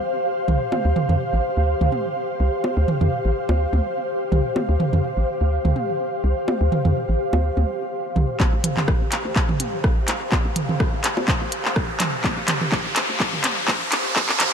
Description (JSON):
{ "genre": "minimal techno", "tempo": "125 BPM", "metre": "4/4", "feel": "swing 54% on 16ths", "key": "D minor", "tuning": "A4 = 442 Hz", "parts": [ { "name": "ethereal airy pad", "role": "texture", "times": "0.0-14.5 s", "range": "G4 to F5", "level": "-25 LUFS", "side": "equal", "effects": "ensemble chorus, built-in reverb, sidechain pumping" }, { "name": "hollow knocking FM bass", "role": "bass", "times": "0.5-14.4 s", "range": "A1 to F2", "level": "-21 LUFS", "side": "equal", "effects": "sidechain pumping, high-pass filter" }, { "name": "electronic toms and bongos", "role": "percussion", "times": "0.5-14.5 s", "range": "none", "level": "-26 LUFS", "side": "right 2 dB", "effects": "analog delay" }, { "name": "electronic kick drum", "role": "drums", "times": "8.4-14.3 s", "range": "none", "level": "-22 LUFS", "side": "equal", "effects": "none" }, { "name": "minimal click drum kit", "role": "drums", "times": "8.4-14.5 s", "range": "handclaps, hi-hat, rim click", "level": "-22 LUFS", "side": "equal", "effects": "overdrive, low-pass filter on snare, low-pass filter on hats, low-pass filter on room" }, { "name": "riser", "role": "sound effects", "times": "9.8-14.5 s", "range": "none", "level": "-28 LUFS", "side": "equal", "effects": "none" } ], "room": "moderate huge ambient reverb, RT60 7.0 s", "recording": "dreamy mix soaked in reverb, high-pass filter", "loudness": "-19 LUFS", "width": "side -7 dB against mid", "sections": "0.0-8.4 A section; 8.4-14.5 B section", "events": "build-up 8.4-14.5; drum fill 8.4-14.5; filter sweep 8.4-14.5; riser 9.8-14.5", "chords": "0.0 Dm" }